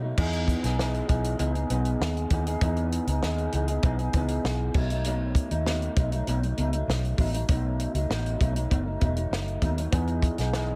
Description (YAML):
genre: indie pop, bedroom pop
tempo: 98 BPM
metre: 4/4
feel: straight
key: E major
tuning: A4 = 445 Hz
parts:
  - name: electric guitar through a small old amp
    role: accompaniment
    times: 0.0-10.8 s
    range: B2 to G#4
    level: -32 LUFS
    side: equal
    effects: analog chorus, vibrato effect
  - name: vintage muted fingered electric bass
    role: bass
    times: 0.0-10.8 s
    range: E1 to B2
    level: -30 LUFS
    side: equal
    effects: none
  - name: compact cocktail drum kit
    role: drums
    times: 0.2-10.7 s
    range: crash cymbal, hi-hat, kick drum, snare drum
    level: -30 LUFS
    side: equal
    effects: none
room: small room ambience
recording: none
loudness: -27 LUFS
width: mono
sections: 0.2-10.8 A section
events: none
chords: 0.2 Emaj7; 4.7 B7; 9.9 Emaj7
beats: | 0.17 0.79 1.40 2.00 | 2.61 3.22 3.83 4.44 | 5.05 5.66 6.27 6.88 | 7.49 8.10 8.71 9.32 | 9.93 10.54